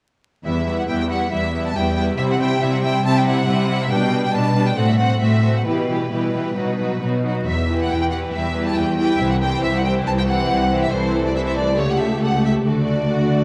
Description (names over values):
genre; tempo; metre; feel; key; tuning
classical, dramatic, fast romantic movement for symphony orchestra; 138 BPM; 4/4; rubato; E minor; A4 = 440 Hz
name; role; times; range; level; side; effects
rich symphonic violin section; second line; 0.4-13.4 s; D4 to E5; -30 LUFS; equal; none
clear studio violin section; melody; 0.5-13.4 s; B4 to A5; -26 LUFS; equal; none
warm symphonic viola section; accompaniment; 0.5-13.4 s; E3 to G4; -26 LUFS; equal; none
concert harp; arpeggios; 0.5-13.4 s; A2 to D5; -27 LUFS; equal; none
rich symphonic cello section; bass; 0.5-13.4 s; C2 to C3; -24 LUFS; equal; none
room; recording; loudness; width
moderate scoring stage reverb, RT60 1.8 s; vinyl crackle; -19 LUFS; mono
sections
0.4-13.4 A section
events
none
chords
0.4 Em; 2.2 C; 3.9 G/B; 4.8 F#dim/A; 5.7 Em/B; 6.6 B; 7.5 Em; 9.2 C; 10.9 Am/C; 11.8 A7/C#; 12.7 D